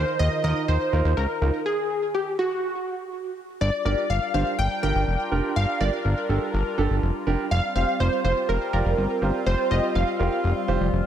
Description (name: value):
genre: synth-pop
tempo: 123 BPM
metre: 4/4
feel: straight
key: G minor from 3.6 s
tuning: A4 = 439 Hz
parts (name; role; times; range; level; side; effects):
- funky polysynth comp; melody; 0.0-11.1 s; Gb4 to G5; -26 LUFS; equal; chorus, tape echo
- warm baby grand piano; accompaniment; 0.0-10.8 s; D4 to D5; -30 LUFS; right 6 dB; none
- sweeping resonant pad; sustained chords; 0.0-11.1 s; Eb3 to Bb4; -31 LUFS; left 1 dB; chorus, phaser
- fat analog bass; bass; 0.0-11.0 s; F1 to Eb2; -23 LUFS; equal; none
room: moderate echo chamber reverb, RT60 1.7 s, digital ambience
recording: echo-heavy mix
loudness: -21 LUFS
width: side -10 dB against mid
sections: 0.0-3.6 A section; 3.6-11.1 A section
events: stop 1.7-3.6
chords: 0.0 Ebsus2; 1.7 N.C.; 3.6 Gm7; 7.5 Fsus2